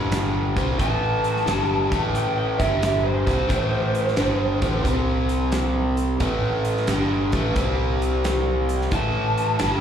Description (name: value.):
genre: blues rock power trio and southern rock.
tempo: 89 BPM.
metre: 4/4.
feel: swing 66% on 8ths.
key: A minor.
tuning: A4 = 435 Hz.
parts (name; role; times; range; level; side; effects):
biting overdriven guitar; riff; 0.0-9.8 s; G2 to C4; -23 LUFS; equal; slapback echo.
fuzz fingered electric bass; bass; 0.0-9.8 s; G1 to C2; -26 LUFS; equal; overdrive.
huge arena drum kit; drums; 0.1-9.8 s; hi-hat, kick drum, snare drum; -27 LUFS; equal; none.
lead guitar through a small cranked amp; melody; 0.8-9.8 s; C5 to A5; -25 LUFS; right 1 dB; overdrive, slapback echo, tape echo.
room: small room ambience.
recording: live gig heard through the venue's PA, club reverb.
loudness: -20 LUFS.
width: side -8 dB against mid.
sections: 0.0-9.8 A section.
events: none.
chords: 0.5 Am; 2.5 G5; 3.2 Am; 4.9 C5; 6.2 A5; 7.6 C5; 8.9 A5.